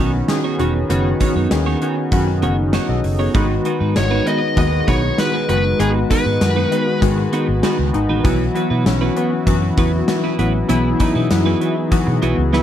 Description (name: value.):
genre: 1980s-style pop.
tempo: 98 BPM.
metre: 4/4.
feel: straight.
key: unclear.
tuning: A4 = 436 Hz.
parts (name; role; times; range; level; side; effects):
chorused retro synth keys; accompaniment; 0.0-12.6 s; D#3 to F#5; -19 LUFS; left 2 dB; tremolo.
brassy analog pad; sustained chords; 0.0-12.6 s; G#3 to B4; -27 LUFS; equal; chorus.
clean electric guitar; riff; 0.0-12.6 s; B3 to C#5; -24 LUFS; right 7 dB; analog chorus, tape echo.
vintage muted fingered electric bass; bass; 0.0-12.6 s; E1 to B2; -20 LUFS; equal; none.
gated 80s drum kit; drums; 0.3-12.6 s; hi-hat, kick drum, snare drum; -21 LUFS; equal; none.
high-gain lead guitar; melody; 4.0-7.0 s; G#4 to D#5; -21 LUFS; left 1 dB; distortion, tape echo.
room: light reverb.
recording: none.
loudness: -15 LUFS.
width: side -10 dB against mid.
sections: 0.0-12.6 A section.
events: none.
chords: 0.0 Badd9; 3.3 G#m7; 8.2 Bsus4.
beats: 0.29 | 0.90 1.51 2.12 2.74 | 3.35 3.96 4.57 5.19 | 5.80 6.41 7.02 7.63 | 8.25 8.86 9.47 10.08 | 10.70 11.31 11.92 12.53.